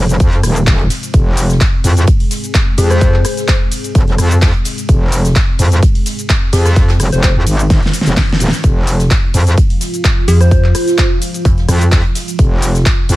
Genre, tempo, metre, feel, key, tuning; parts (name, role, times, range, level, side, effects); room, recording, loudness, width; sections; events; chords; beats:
bass house; 128 BPM; 4/4; swing 54% on 16ths; F minor; A4 = 438 Hz
sweeping resonant pad; sustained chords; 0.0-13.2 s; Ab3 to Ab4; -23 LUFS; right 1 dB; chorus, sidechain pumping
metallic wobble bass; bass; 0.0-13.2 s; Eb1 to F2; -12 LUFS; equal; chorus, sidechain pumping
big-room dance drum kit; drums; 0.1-13.2 s; handclaps, hi-hat, ride cymbal, rim click, shaker, snare drum; -19 LUFS; equal
electronic kick drum; drums; 0.2-13.0 s; -12 LUFS; equal
open jazz drum kit; drums; 0.2-13.2 s; hi-hat, snare drum; -32 LUFS; right 3 dB
soft struck synth lead; melody; 2.8-3.6, 6.5-7.3, 10.3-11.1 s; Ab4 to C5; -22 LUFS; left 2 dB; chorus, tremolo, ping-pong delay
metallic FM bass; bass; 10.3-11.7 s; F1 to F2; -10 LUFS; equal; tube saturation, sidechain pumping
little or no reverb; -10 LUFS; side -17 dB against mid
0.0-13.2 A section
drum fill 7.7-8.6
0.0 Fm
0.20 0.67 | 1.14 1.61 2.08 2.54 | 3.01 3.48 3.95 4.42 | 4.89 5.36 5.83 6.29 | 6.76 7.23 7.70 8.17 | 8.64 9.11 9.58 10.04 | 10.51 10.98 11.45 11.92 | 12.39 12.86